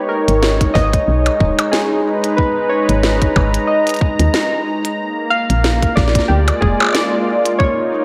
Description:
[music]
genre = IDM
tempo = 92 BPM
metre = 4/4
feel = swing 56% on 16ths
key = Ab melodic minor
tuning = A4 = 440 Hz
[part]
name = warbly lo-fi synth keys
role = melody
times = 0.0-8.0 s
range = G4 to F5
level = -21 LUFS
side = equal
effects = chorus, delay
[part]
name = warm analog pad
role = sustained chords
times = 0.0-8.0 s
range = Ab3 to Bb5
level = -21 LUFS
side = equal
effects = chorus
[part]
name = woody FM bass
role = bass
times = 0.3-6.7 s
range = Eb1 to Eb2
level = -18 LUFS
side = equal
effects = none
[part]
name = glitchy drum kit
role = drums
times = 0.3-7.6 s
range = hi-hat, percussion blips, snare drum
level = -22 LUFS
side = equal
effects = none
[part]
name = electronic kick drum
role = drums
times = 0.6-7.7 s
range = none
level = -20 LUFS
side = equal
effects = none
[sound]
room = light reverb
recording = none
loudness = -15 LUFS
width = mono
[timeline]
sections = 0.0-8.0 A section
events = none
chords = 0.0 Abmadd9; 5.0 Bb7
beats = 0.43 1.08 1.73 | 2.38 3.03 3.69 4.34 | 4.99 5.64 6.29 6.95 | 7.60

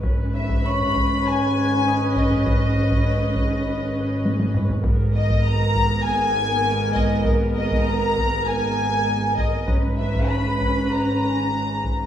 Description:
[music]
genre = cinematic, suspense film score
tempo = 100 BPM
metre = 4/4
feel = straight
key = unclear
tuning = A4 = 439 Hz
[part]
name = dark studio double bass section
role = bass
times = 0.0-12.1 s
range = G#1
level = -27 LUFS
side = right 1 dB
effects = none
[part]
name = solo taiko drums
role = drums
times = 0.0-12.1 s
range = none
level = -24 LUFS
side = equal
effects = none
[part]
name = vibraphone with medium hard mallets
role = texture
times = 0.0-12.1 s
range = C#5 to D#6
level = -32 LUFS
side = left 2 dB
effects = none
[part]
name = dark studio viola section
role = accompaniment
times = 0.1-12.1 s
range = B3 to B4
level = -25 LUFS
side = right 1 dB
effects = none
[part]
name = warm studio cello section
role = bass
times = 0.1-12.1 s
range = G#2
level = -28 LUFS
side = right 1 dB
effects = none
[part]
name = warm symphonic violin section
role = melody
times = 0.3-12.1 s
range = D#5 to B5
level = -27 LUFS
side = left 2 dB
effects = none
[part]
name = rich studio violin section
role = second line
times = 0.3-12.1 s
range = D#5 to B5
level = -28 LUFS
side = left 4 dB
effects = none
[sound]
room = wet recital hall reverb, RT60 1.4 s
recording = heard from further back in the room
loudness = -18 LUFS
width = side -10 dB against mid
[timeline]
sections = 0.0-12.1 A section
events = drum fill 4.2-4.8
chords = 0.0 C#5/G#; 4.8 G#madd9; 9.7 C#5/G#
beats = | 0.05 0.66 1.26 1.86 | 2.46 3.05 3.65 4.24 | 4.84 5.45 6.05 6.65 | 7.25 7.87 8.47 9.07 | 9.68 10.30 10.91 11.53

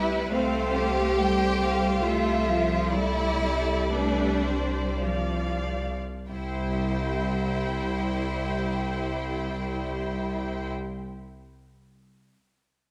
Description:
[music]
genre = classical, slow romantic movement for string orchestra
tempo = 46-72 BPM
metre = 3/4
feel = rubato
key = C major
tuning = A4 = 436 Hz
[part]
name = rich chamber violin section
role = melody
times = 0.0-10.7 s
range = D5 to G5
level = -37 LUFS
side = equal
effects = none
[part]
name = clear chamber violin section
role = second line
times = 0.0-10.7 s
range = C4 to G4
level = -31 LUFS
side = equal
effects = none
[part]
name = rich chamber viola section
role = accompaniment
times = 0.0-10.7 s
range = F3 to D5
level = -35 LUFS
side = equal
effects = none
[part]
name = clear chamber cello section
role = bass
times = 0.0-10.7 s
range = C2 to A3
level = -34 LUFS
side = equal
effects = none
[part]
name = clear chamber double bass section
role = bass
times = 0.0-10.7 s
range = C2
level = -33 LUFS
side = equal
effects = none
[sound]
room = moderate concert hall reverb, RT60 1.9 s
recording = none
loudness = -27 LUFS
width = mono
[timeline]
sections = 0.0-6.3 A section; 6.3-9.9 B section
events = slowing down 0.0-6.3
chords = 0.3 F/C; 2.9 G7/C; 6.3 C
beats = | 0.33 1.20 2.04 | 2.94 3.91 5.04 | 6.30 7.50 8.72

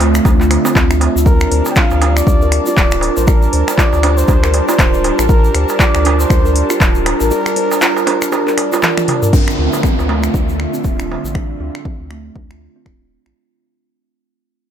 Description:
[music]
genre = afro house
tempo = 119 BPM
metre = 4/4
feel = swing 58% on 16ths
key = D minor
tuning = A4 = 438 Hz
[part]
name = warm analog pad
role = sustained chords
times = 0.0-13.3 s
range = D3 to A5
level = -21 LUFS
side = left 1 dB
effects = wide subtle chorus, sidechain pumping
[part]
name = kalimba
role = arpeggios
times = 0.0-13.4 s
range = A3 to C5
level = -19 LUFS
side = right 3 dB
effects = sidechain pumping, low-pass filter, diffuse ambient delay
[part]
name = warm sub bass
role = bass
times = 0.0-13.3 s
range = D1 to D2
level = -17 LUFS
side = left 1 dB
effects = sidechain pumping
[part]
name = afro-pop drum kit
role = drums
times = 0.0-13.3 s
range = crash cymbal, finger snaps, handclaps, hi-hat, toms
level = -19 LUFS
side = equal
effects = none
[part]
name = darbuka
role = percussion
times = 0.0-11.2 s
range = none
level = -24 LUFS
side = right 5 dB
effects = none
[part]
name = tube shaker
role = percussion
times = 0.1-11.3 s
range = none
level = -28 LUFS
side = left 3 dB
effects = none
[part]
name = electronic kick drum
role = drums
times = 0.3-13.0 s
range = none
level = -13 LUFS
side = equal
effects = none
[part]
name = trumpet with bucket mute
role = melody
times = 1.3-8.8 s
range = Bb4 to G5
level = -21 LUFS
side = equal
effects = diffuse ambient delay
[part]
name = downlifter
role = sound effects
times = 9.3-13.4 s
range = none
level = -23 LUFS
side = right 1 dB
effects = none
[sound]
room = moderate plate reverb, RT60 2.5 s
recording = dreamy mix soaked in reverb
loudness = -11 LUFS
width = side -9 dB against mid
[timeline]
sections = 0.0-9.3 A section; 9.3-13.4 B section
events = drop 0.0-9.3; drum fill 8.8-9.3; fade-out 9.3-13.4; filter sweep on kalimba 9.3-13.4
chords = 0.0 Dm; 1.3 Gm/D; 9.3 Dm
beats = 0.25 0.76 | 1.26 1.77 2.27 2.77 | 3.28 3.78 4.29 4.79 | 5.30 5.80 6.30 6.81 | 7.31 7.82 8.32 8.82 | 9.33 9.83 10.34 10.84 | 11.35 11.85 12.36 12.86

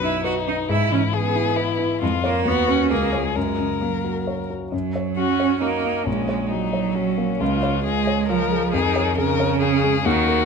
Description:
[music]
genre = quick classical-period movement for piano trio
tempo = 135 BPM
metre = 3/4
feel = straight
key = F# major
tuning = A4 = 441 Hz
[part]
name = warm violin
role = melody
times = 0.0-10.4 s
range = C#4 to B4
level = -24 LUFS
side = left 10 dB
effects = none
[part]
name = clear cello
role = second line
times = 0.0-10.4 s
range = C#3 to F#4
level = -23 LUFS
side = right 8 dB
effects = none
[part]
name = warm concert grand piano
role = accompaniment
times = 0.0-10.4 s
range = A#1 to C#5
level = -23 LUFS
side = left 2 dB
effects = none
[sound]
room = moderate scoring stage reverb, RT60 1.9 s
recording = close, detailed microphones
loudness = -19 LUFS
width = side -5 dB against mid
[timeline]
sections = 0.0-4.7 A section; 4.7-10.4 B section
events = none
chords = 0.0 B; 0.7 E/G#; 2.0 C#/E#; 2.5 B/D#; 2.9 C#; 3.4 F#; 6.1 F#/A#; 7.4 C#; 8.7 C#/E#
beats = 0.25 | 0.70 1.14 1.58 | 2.02 2.46 2.91 | 3.36 3.82 4.27 | 4.73 5.18 5.62 | 6.07 6.51 6.96 | 7.40 7.85 8.29 | 8.73 9.17 9.61 | 10.05

